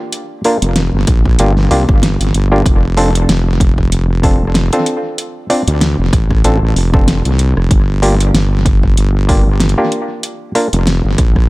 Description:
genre	glitch hop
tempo	95 BPM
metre	4/4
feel	swing 56% on 16ths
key	G minor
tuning	A4 = 439 Hz
part	muted clav	stabs	0.0-10.7 s	Bb3 to D5	-17 LUFS	equal	vintage 12-bit sampler grit, sidechain pumping, tape echo
part	pop drum kit	drums	0.1-11.5 s	hi-hat, rim click, snare drum	-18 LUFS	equal	tape echo
part	wobble bass	bass	0.6-11.5 s	F1 to D2	-13 LUFS	equal	chorus
part	electronic kick drum	drums	1.1-11.5 s	none	-12 LUFS	equal	none
room	little or no reverb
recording	echo-heavy mix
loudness	-10 LUFS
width	side -21 dB against mid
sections	0.0-11.5 A section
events	none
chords	0.0 Gm7; 2.7 F6; 7.7 Gm7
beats	| 0.13 0.76 1.39 2.03 | 2.66 3.29 3.92 4.55 | 5.18 5.82 6.45 7.08 | 7.71 8.34 8.97 9.61 | 10.24 10.87

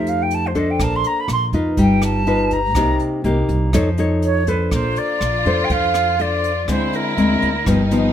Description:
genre	bossa nova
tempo	122 BPM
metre	4/4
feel	straight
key	Bb major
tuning	A4 = 440 Hz
part	concert flute	melody	0.0-7.9 s	Bb4 to C6	-21 LUFS	right 1 dB	none
part	nylon-string guitar	accompaniment	0.0-8.1 s	G2 to Db5	-19 LUFS	left 2 dB	none
part	upright bass	bass	0.0-8.1 s	G1 to F2	-22 LUFS	right 1 dB	none
part	jazz brush drum kit	drums	0.1-8.0 s	hi-hat, kick drum, rim click	-26 LUFS	right 1 dB	none
part	warm symphonic violin section	second line	4.7-8.1 s	D#4 to F4	-25 LUFS	right 1 dB	none
room	moderate studio reverb, RT60 0.6 s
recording	none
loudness	-16 LUFS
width	side -10 dB against mid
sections	0.0-4.7 A section; 4.7-8.1 B section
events	flute solo 0.0-4.7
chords	0.0 F9; 0.8 Bbmaj9; 1.8 G7b13; 2.8 Cm7; 3.7 F7b13; 4.7 Bbmaj9; 6.7 Eaug7/D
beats	0.30 | 0.79 1.28 1.77 2.26 | 2.75 3.25 3.74 4.23 | 4.72 5.21 5.70 6.19 | 6.68 7.17 7.66

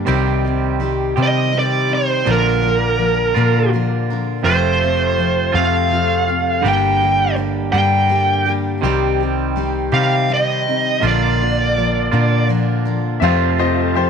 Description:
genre	rock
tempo	55 BPM (dotted quarters)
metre	6/8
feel	straight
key	C dorian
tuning	A4 = 439 Hz
part	picked steel-string acoustic guitar	accompaniment	0.0-14.1 s	G2 to Bb4	-23 LUFS	left 12 dB	none
part	twangy electric guitar	riff	0.0-14.1 s	F2 to G4	-21 LUFS	right 11 dB	none
part	hollow-body short-scale picked electric bass	bass	0.0-14.1 s	F1 to C3	-20 LUFS	left 1 dB	none
part	smooth overdriven lead guitar	melody	1.2-12.5 s	Bb4 to G5	-18 LUFS	right 1 dB	none
part	bright upright piano	second line	13.2-14.1 s	G4 to F5	-18 LUFS	left 11 dB	none
part	tonewheel organ	sustained chords	13.2-14.1 s	C4 to A4	-26 LUFS	left 1 dB	chorus vibrato, fast rotary speaker
room	light reverb, studio ambience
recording	1960s-style stereo with parts hard left and right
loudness	-14 LUFS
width	side -6 dB against mid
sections	0.0-13.2 A section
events	none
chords	0.1 Cm; 2.3 Bb; 4.5 F; 6.7 Gm; 8.8 Cm; 11.0 Bb; 13.2 F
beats	| 0.08 1.18 | 2.27 3.37 | 4.46 5.56 | 6.65 7.75 | 8.84 9.94 | 11.03 12.13 | 13.22

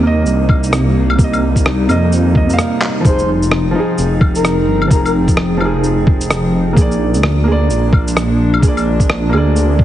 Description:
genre	future garage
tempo	129 BPM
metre	4/4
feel	swing 60% on 16ths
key	F dorian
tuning	A4 = 439 Hz
part	felt-muted upright piano	accompaniment	0.0-9.8 s	C3 to F5	-19 LUFS	right 2 dB	vintage 12-bit sampler grit, sidechain pumping, analog delay
part	warbly tape-like pad	sustained chords	0.2-9.8 s	C3 to Ab4	-19 LUFS	equal	chorus, built-in reverb, phaser, sidechain pumping
part	dark detuned saw bass	bass	0.0-9.8 s	F1 to F2	-15 LUFS	equal	sidechain pumping
part	electronic shaker, claves, rim click and handclaps	drums	0.3-9.7 s	none	-20 LUFS	left 1 dB	studio ambience
part	electronic kick drum	drums	0.5-9.8 s	none	-12 LUFS	equal	studio ambience
part	breathy flute-like synth lead	melody	3.1-5.1 s	Bb4 to C5	-22 LUFS	left 4 dB	tremolo, wide subtle chorus, tape echo
room	light reverb, digital ambience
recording	heavily compressed radio sound, multiband compression, vinyl crackle, nothing above 10.6 kHz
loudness	-11 LUFS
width	side -12 dB against mid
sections	0.0-9.8 A section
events	break 2.6-3.0; drum fill 2.8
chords	0.0 Cm7; 3.0 Fm7; 6.8 Bb7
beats	0.26 0.72 | 1.19 1.65 2.12 2.58 | 3.05 3.51 3.98 4.45 | 4.91 5.38 5.84 6.30 | 6.77 7.24 7.70 8.17 | 8.63 9.10 9.56

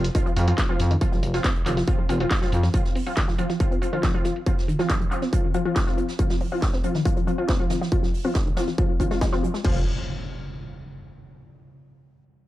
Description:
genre	driving peak-time techno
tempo	139 BPM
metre	4/4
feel	straight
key	unclear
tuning	A4 = 439 Hz
part	rave stab	stabs	0.0-9.8 s	F3 to F4	-28 LUFS	left 2 dB	chorus, built-in reverb, sidechain pumping, tape echo
part	growling FM bass	bass	0.0-2.7, 9.6-9.8 s	F1 to F2	-22 LUFS	equal	sidechain pumping
part	jazz brush drum kit	drums	0.0-9.6 s	hi-hat, snare drum	-40 LUFS	right 2 dB	high-pass filter on hats, high-pass filter on snare, high-pass filter on room
part	techno drum kit	drums	0.0-9.7 s	crash cymbal, handclaps, hi-hat	-32 LUFS	equal	sidechain pumping on hats, low-pass filter on hats, low-pass filter on snare, sidechain pumping on cymbals, low-pass filter on cymbals, low-pass filter on room
part	resonant blip pluck	riff	0.1-9.8 s	Eb3 to C4	-29 LUFS	equal	chorus, phaser, sidechain pumping, tape echo
part	electronic kick drum	drums	0.1-9.7 s	none	-23 LUFS	equal	distortion
part	impact	sound effects	9.6-11.4 s	none	-33 LUFS	equal	none
room	little or no reverb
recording	none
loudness	-21 LUFS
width	side -15 dB against mid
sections	0.0-9.6 A section; 9.6-11.4 B section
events	filter sweep on drum 0.0-9.6; filter sweep on synth stab 0.0-9.6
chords	0.0 F5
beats	0.15 0.58 | 1.01 1.44 1.88 2.31 | 2.74 3.17 3.60 4.03 | 4.46 4.90 5.33 5.76 | 6.19 6.62 7.05 7.49 | 7.92 8.35 8.78 9.21 | 9.64 10.08 10.51 10.94

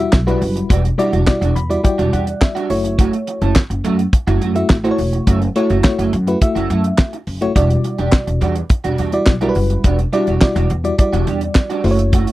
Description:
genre	early-eighties boogie funk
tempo	105 BPM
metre	4/4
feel	straight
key	E dorian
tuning	A4 = 441 Hz
part	FM electric piano with auto-pan	accompaniment	0.0-12.3 s	G3 to B5	-19 LUFS	left 1 dB	none
part	electric guitar at the edge of break-up	riff	0.0-12.3 s	G3 to A4	-22 LUFS	right 6 dB	analog chorus
part	upright bass	bass	0.0-12.2 s	E1 to F#2	-18 LUFS	equal	none
part	damped 70s drum kit	drums	0.1-12.3 s	handclaps, hi-hat, kick drum, snare drum	-14 LUFS	equal	none
room	little or no reverb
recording	dry, close 1970s-style studio recording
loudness	-14 LUFS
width	side -16 dB against mid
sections	0.0-12.3 A section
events	FM electric piano fill 1.3-3.0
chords	0.0 Em9; 2.7 F#m7; 7.6 Em9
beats	0.13 | 0.70 1.27 1.84 2.42 | 2.99 3.56 4.13 4.70 | 5.27 5.84 6.42 6.99 | 7.56 8.13 8.70 9.27 | 9.84 10.42 10.99 11.56 | 12.13

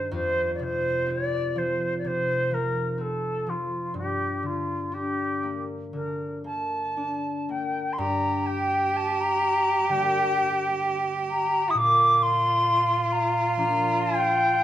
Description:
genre	celtic folk, Celtic slow air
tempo	57-67 BPM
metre	4/4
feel	rubato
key	G minor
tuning	A4 = 435 Hz
part	bright wooden flute	melody	0.0-14.6 s	F4 to Eb6	-24 LUFS	left 1 dB	none
part	concert harp	accompaniment	0.0-14.6 s	F2 to Eb4	-31 LUFS	left 1 dB	none
part	rich cello	second line	8.0-14.6 s	E4 to G4	-26 LUFS	right 4 dB	none
room	moderate large studio reverb, RT60 1.0 s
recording	band playing live in one room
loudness	-23 LUFS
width	side -12 dB against mid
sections	0.0-8.0 A section; 8.0-14.6 B section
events	none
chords	0.1 F5; 4.0 Gm; 11.8 Bb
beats	| 0.12 1.07 2.03 2.98 | 3.95 4.93 5.94 6.98 | 7.99 8.96 9.91 10.85 | 11.77 12.68 13.59 14.50

